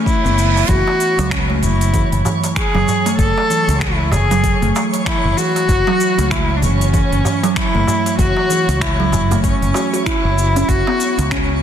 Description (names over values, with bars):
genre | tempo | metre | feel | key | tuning
organic downtempo | 96 BPM | 4/4 | swing 60% on 16ths | F# minor | A4 = 441 Hz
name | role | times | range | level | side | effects
warm cello | melody | 0.0-11.6 s | B3 to A4 | -18 LUFS | left 1 dB | ping-pong delay
kalimba | arpeggios | 0.0-11.5 s | E3 to F#4 | -20 LUFS | right 2 dB | ping-pong delay
reverse cymbal | sound effects | 0.0-0.7 s | none | -25 LUFS | right 7 dB | none
twinkling granular texture | texture | 0.0-11.6 s | C#5 | -28 LUFS | right 1 dB | built-in reverb
electronic kick drum | drums | 0.1-11.5 s | none | -20 LUFS | equal | none
organic electronic drum kit | drums | 0.1-11.5 s | finger snaps, hi-hat, shaker | -25 LUFS | left 1 dB | overdrive, soft clipping on snare
mellow fretless electric bass | bass | 0.2-11.6 s | F#1 to C#2 | -18 LUFS | equal | sidechain pumping
darbuka | percussion | 0.6-11.6 s | none | -25 LUFS | right 2 dB | none
room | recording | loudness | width
light reverb | dense, heavily limited modern master | -13 LUFS | side -9 dB against mid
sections
0.7-11.6 A section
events
reverse cymbal 0.0-0.7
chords
0.0 Aadd9 (rootless); 0.7 F#7(no3); 10.7 Aadd9/F# (rootless)